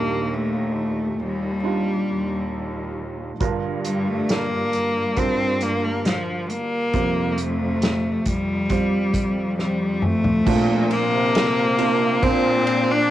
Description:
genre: pop ballad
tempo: 68 BPM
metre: 4/4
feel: straight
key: Bb major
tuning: A4 = 440 Hz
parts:
  - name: clear cello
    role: melody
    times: 0.0-13.1 s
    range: F3 to D4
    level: -21 LUFS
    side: left 2 dB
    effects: cassette tape
  - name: felt-muted upright piano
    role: accompaniment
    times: 0.0-13.1 s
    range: G2 to C5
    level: -27 LUFS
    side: right 8 dB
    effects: cassette tape
  - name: warm studio cello section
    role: bass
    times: 0.0-13.1 s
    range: Eb2 to C3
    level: -28 LUFS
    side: left 1 dB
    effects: none
  - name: unplugged drum kit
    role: drums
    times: 3.4-12.9 s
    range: crash cymbal, hi-hat, kick drum, ride cymbal, snare drum, toms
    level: -26 LUFS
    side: equal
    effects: cassette tape
room: light reverb, small room ambience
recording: home recording on cassette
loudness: -19 LUFS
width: side -13 dB against mid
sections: 0.0-10.5 A section; 10.5-13.1 B section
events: drum fill 9.6-10.5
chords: 0.0 Ebmaj7; 3.4 Gm7; 6.9 Fsus2; 10.5 Bbadd9

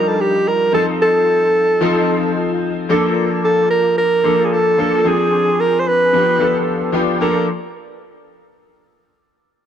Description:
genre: pop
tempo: 111 BPM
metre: 4/4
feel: straight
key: Bb major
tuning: A4 = 440 Hz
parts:
  - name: breathy alto saxophone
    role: melody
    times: 0.0-7.5 s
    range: G4 to C5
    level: -15 LUFS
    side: right 1 dB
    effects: none
  - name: bright concert grand piano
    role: accompaniment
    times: 0.0-7.5 s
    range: F3 to Bb4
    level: -17 LUFS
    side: left 2 dB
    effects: ensemble chorus
room: moderate plate reverb, RT60 2.7 s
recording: dark, warm production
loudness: -13 LUFS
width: side -9 dB against mid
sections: 0.0-2.9 A section; 2.9-7.2 B section; 7.2-9.4 C section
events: none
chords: 0.0 Ebmaj7; 0.7 F7; 2.9 Bbmaj7; 5.0 Dm7b5; 6.1 G7; 7.2 Bbmaj7

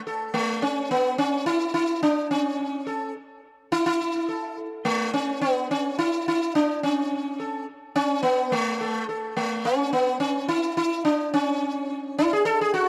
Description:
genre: indian classical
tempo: 106 BPM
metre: 4/4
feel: straight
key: A raga bilaval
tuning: A4 = 440 Hz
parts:
  - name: sitar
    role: solo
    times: 0.1-12.9 s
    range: A3 to A4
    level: -25 LUFS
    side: equal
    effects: tape echo
room: little or no reverb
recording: dry, close 1970s-style studio recording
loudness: -25 LUFS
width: mono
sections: 0.0-12.9 A section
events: none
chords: none

